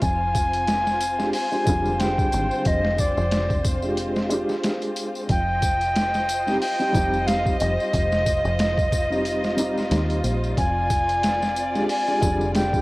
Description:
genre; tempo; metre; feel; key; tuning
trip hop; 91 BPM; 4/4; swing 56% on 16ths; F dorian; A4 = 440 Hz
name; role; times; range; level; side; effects
bright baroque flute; melody; 0.0-12.8 s; D5 to Ab5; -24 LUFS; equal; vintage 12-bit sampler grit, cassette tape
warm symphonic violin section; sustained chords; 0.0-12.8 s; C4 to Eb5; -30 LUFS; equal; vintage 12-bit sampler grit, cassette tape
deep dub fingered electric bass; bass; 0.0-12.8 s; F1 to Eb2; -27 LUFS; equal; none
boom bap sampler-style drum kit; drums; 0.0-12.8 s; hi-hat, kick drum, snare drum; -25 LUFS; equal; overdrive, small room ambience, cassette tape
tambourine; percussion; 0.0-12.8 s; none; -38 LUFS; left 2 dB; none
felt-muted upright piano; accompaniment; 1.2-12.8 s; D3 to G4; -26 LUFS; equal; tremolo, cassette tape
room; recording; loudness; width
light reverb; home recording on cassette; -20 LUFS; side -20 dB against mid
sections
0.0-12.8 A section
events
none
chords
0.0 Fm69; 5.3 Cm/F; 10.6 Fm69

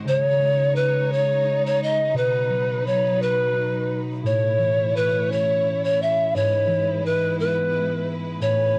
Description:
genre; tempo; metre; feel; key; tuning
children's music, lullaby; 58 BPM (dotted quarters); 6/8; straight; E major; A4 = 440 Hz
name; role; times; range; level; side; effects
concert harp; accompaniment; 0.0-8.8 s; G#2 to G#4; -28 LUFS; equal; none
clear studio string section; sustained chords; 0.0-8.8 s; F#3 to C#5; -35 LUFS; equal; none
pan flute; melody; 0.1-8.8 s; B4 to E5; -23 LUFS; equal; cassette tape
room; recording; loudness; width
light reverb; home recording on cassette; -22 LUFS; mono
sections
0.0-8.8 A section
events
none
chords
0.1 C#sus2; 2.1 B; 4.2 A; 6.3 E/G#

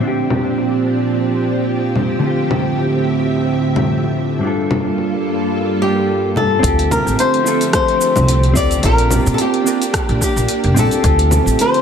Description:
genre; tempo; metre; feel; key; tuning
sunset chillout; 109 BPM; 4/4; swing 55% on 16ths; D minor; A4 = 437 Hz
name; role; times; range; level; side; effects
mellow electric guitar; accompaniment; 0.0-11.8 s; G2 to Bb4; -19 LUFS; moving between left 1 dB and right 8 dB; auto-pan, tape echo
soft string machine; sustained chords; 0.0-11.8 s; D2 to E5; -20 LUFS; equal; ensemble chorus
deep house drum kit; drums; 0.3-11.8 s; cabasa, congas, hi-hat, rim click; -21 LUFS; left 1 dB; low-pass filter on hats, low-pass filter on perc, low-pass filter on snare, low-pass filter on room, analog delay
flamenco guitar; melody; 5.8-11.8 s; G4 to D5; -17 LUFS; left 3 dB; dub echo
upright bass; bass; 6.6-11.5 s; F1 to Bb2; -16 LUFS; equal; none
electronic kick drum; drums; 6.6-11.2 s; none; -19 LUFS; equal; overdrive
room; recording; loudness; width
moderate echo chamber reverb, RT60 1.9 s, digital ambience; echo-heavy mix; -13 LUFS; side -7 dB against mid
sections
0.0-6.6 A section; 6.6-11.8 B section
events
none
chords
0.0 Bb69; 2.2 Dm11; 4.4 Gm7; 6.6 Dm11; 8.8 Bb69; 11.0 Dm11

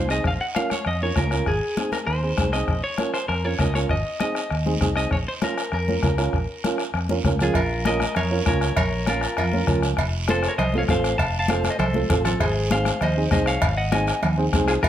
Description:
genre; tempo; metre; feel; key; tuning
latin, cumbia; 198 BPM; 4/4; straight; Bb minor; A4 = 440 Hz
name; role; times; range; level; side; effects
clean electric guitar; melody; 0.0-14.9 s; F4 to A5; -26 LUFS; equal; spring reverb
fingered electric bass; bass; 0.0-14.9 s; F1 to F2; -25 LUFS; equal; none
dark upright piano; accompaniment; 0.1-14.8 s; C4 to Bb4; -27 LUFS; right 3 dB; none
bombo; percussion; 0.1-14.9 s; none; -26 LUFS; left 2 dB; none
guiro; percussion; 0.1-14.9 s; none; -35 LUFS; right 7 dB; none
congas; percussion; 0.3-14.9 s; none; -28 LUFS; left 2 dB; none
cowbell; percussion; 7.6-14.9 s; none; -29 LUFS; right 3 dB; none
room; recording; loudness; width
moderate studio reverb, RT60 0.9 s; none; -20 LUFS; side -11 dB against mid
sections
0.0-7.6 A section; 7.6-14.9 B section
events
drum fill 7.1-7.6, 12.0-12.4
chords
0.3 Bbm; 1.5 Ab; 2.7 Bbm; 3.9 Ab; 5.1 Bbm; 10.0 F; 12.4 Ab

